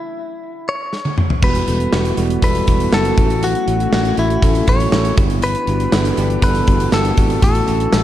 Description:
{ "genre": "1980s-style pop", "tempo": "120 BPM", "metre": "4/4", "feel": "straight", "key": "unclear", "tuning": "A4 = 442 Hz", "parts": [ { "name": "direct-recorded clean electric guitar", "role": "melody", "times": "0.0-8.0 s", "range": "E4 to C#5", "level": "-21 LUFS", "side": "left 3 dB", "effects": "none" }, { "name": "gated 80s drum kit", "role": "drums", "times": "0.9-8.0 s", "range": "crash cymbal, hi-hat, kick drum, snare drum, tambourine, toms", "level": "-17 LUFS", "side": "equal", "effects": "none" }, { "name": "bell-like tine electric piano", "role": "accompaniment", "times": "1.4-8.0 s", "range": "G3 to A4", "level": "-21 LUFS", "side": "right 2 dB", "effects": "slow stereo tremolo" }, { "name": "soft string machine", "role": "sustained chords", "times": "1.9-8.0 s", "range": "E3 to G4", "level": "-27 LUFS", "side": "left 1 dB", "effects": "none" }, { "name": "sustaining fretless electric bass", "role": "bass", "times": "1.4-8.0 s", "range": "E1 to A1", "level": "-20 LUFS", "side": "equal", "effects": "none" } ], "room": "light reverb, small room reverb", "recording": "dark, warm production", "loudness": "-13 LUFS", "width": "side -12 dB against mid", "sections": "0.0-1.4 A section; 1.4-8.0 B section", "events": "stop 0.0-1.4; drum fill 0.9-1.4", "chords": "0.0 F#7(no3) (rootless); 1.4 Emadd9; 3.2 A6; 5.2 G6; 7.4 A6" }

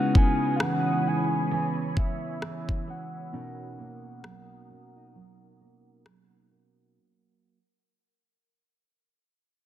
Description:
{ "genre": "contemporary R&B", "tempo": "66 BPM", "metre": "4/4", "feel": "swing 58% on 16ths", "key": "unclear", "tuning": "A4 = 440 Hz", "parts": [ { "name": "soft octave-layered synth lead", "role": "melody", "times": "0.0-6.5 s", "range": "E5 to G#5", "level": "-33 LUFS", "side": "left 1 dB", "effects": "chorus, low-pass filter, tape echo" }, { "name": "muted felt-like synth keys", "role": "accompaniment", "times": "0.0-7.0 s", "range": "G#3 to B4", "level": "-33 LUFS", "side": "left 4 dB", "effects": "chorus, phaser, low-pass filter" }, { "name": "ethereal airy pad", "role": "sustained chords", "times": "0.0-6.9 s", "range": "A#4 to E6", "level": "-38 LUFS", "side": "right 1 dB", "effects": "ensemble chorus, built-in reverb, low-pass filter" }, { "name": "picked steel-string acoustic guitar", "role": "arpeggios", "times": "0.0-7.6 s", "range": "B2 to D#4", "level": "-31 LUFS", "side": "right 4 dB", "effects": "low-pass filter" }, { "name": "smooth R&B drum kit", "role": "drums", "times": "0.2-6.3 s", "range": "kick drum, rim click", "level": "-23 LUFS", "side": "equal", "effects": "soft clipping on snare" } ], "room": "light reverb, digital ambience", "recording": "dense, heavily limited modern master", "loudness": "-25 LUFS", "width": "side -12 dB against mid", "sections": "0.0-7.0 A section", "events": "fade-out 0.0-7.0; filter sweep 0.0-7.0; break 3.3-7.0", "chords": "0.0 C#m9; 3.3 Bmaj7" }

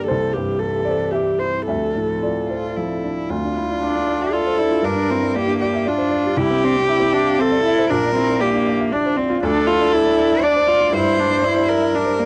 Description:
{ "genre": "neoclassical piano and strings", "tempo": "117 BPM", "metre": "3/4", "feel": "rubato", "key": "D minor", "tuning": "A4 = 440 Hz", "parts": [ { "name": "warm cello", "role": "second line", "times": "0.0-12.3 s", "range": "E3 to D5", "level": "-23 LUFS", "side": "equal", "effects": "cassette tape" }, { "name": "warm upright piano", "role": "accompaniment", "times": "0.0-12.3 s", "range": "Bb1 to G5", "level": "-25 LUFS", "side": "equal", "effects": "cassette tape" }, { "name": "warm viola", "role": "accompaniment", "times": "0.0-12.3 s", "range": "Bb3 to C5", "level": "-23 LUFS", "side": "equal", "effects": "cassette tape" }, { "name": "warbly tape-like pad", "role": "sustained chords", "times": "0.0-12.3 s", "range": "F3 to E5", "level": "-34 LUFS", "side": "equal", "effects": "none" } ], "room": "light reverb", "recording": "home recording on cassette", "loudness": "-19 LUFS", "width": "mono", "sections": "0.0-3.3 A section; 3.3-12.3 B section", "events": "none", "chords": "0.1 C; 1.7 Dm7; 4.9 Gm; 6.4 C; 7.9 Bb; 9.4 Dm; 10.9 Gm" }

